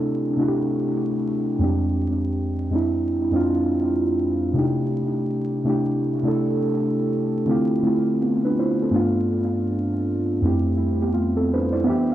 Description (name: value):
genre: hip hop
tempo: 82 BPM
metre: 4/4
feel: swing 63% on 16ths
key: C major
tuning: A4 = 440 Hz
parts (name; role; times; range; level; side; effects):
- muted felt-like synth keys; solo; 0.0-12.1 s; F2 to E5; -20 LUFS; equal; chorus, tape echo
room: moderate spring reverb, RT60 2.1 s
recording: echo-heavy mix, vinyl crackle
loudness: -20 LUFS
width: side -12 dB against mid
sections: 0.0-7.5 A section; 7.5-12.1 B section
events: synth keys fill 11.1-12.1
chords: 0.0 C6; 1.6 Fm6; 4.6 C6; 7.5 Dm11; 8.9 G9; 10.4 Fmaj9